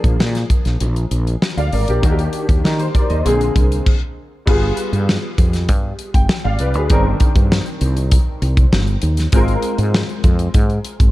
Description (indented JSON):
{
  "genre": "polished 1980s jazz-funk pop",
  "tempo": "99 BPM",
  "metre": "4/4",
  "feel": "straight",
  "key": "unclear",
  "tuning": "A4 = 441 Hz",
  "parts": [
    { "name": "clear baby grand piano", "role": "accompaniment", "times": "0.0-11.1 s", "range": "D3 to G5", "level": "-22 LUFS", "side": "left 1 dB", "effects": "ensemble chorus" },
    { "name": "woody fretless electric bass", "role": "bass", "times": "0.0-11.1 s", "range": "G1 to Eb3", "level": "-18 LUFS", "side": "equal", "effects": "none" },
    { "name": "modern studio drum kit", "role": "drums", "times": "0.0-11.1 s", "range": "crash cymbal, hi-hat, kick drum, snare drum", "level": "-16 LUFS", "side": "equal", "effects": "none" }
  ],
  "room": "little or no reverb",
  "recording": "dark, warm production",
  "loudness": "-14 LUFS",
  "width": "side -17 dB against mid",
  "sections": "0.0-4.5 A section; 4.5-11.1 B section",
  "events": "stop 3.9-4.5",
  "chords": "0.0 Bb7; 2.0 Ebmaj7; 3.3 Bb9; 4.5 G7b9; 6.9 Cm9/G; 9.3 Ab69"
}